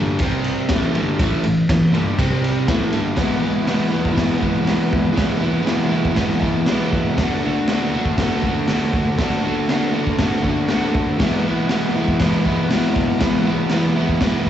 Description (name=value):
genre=garage rock duo or trio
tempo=120 BPM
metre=4/4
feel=straight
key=E mixolydian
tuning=A4 = 440 Hz
part: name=crunchy overdriven guitar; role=riff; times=0.0-14.5 s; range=G2 to F#4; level=-18 LUFS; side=equal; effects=slapback echo
part: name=raw garage drum kit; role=drums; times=0.2-14.5 s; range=hi-hat, kick drum, ride cymbal, snare drum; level=-21 LUFS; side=equal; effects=none
room=light reverb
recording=live gig heard through the venue's PA, club reverb, nothing above 7.9 kHz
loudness=-16 LUFS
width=side -10 dB against mid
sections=0.0-3.2 A section; 3.2-14.5 B section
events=none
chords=0.2 C5; 0.7 A5; 2.2 C5; 2.7 A5; 3.2 E; 7.2 D; 11.2 E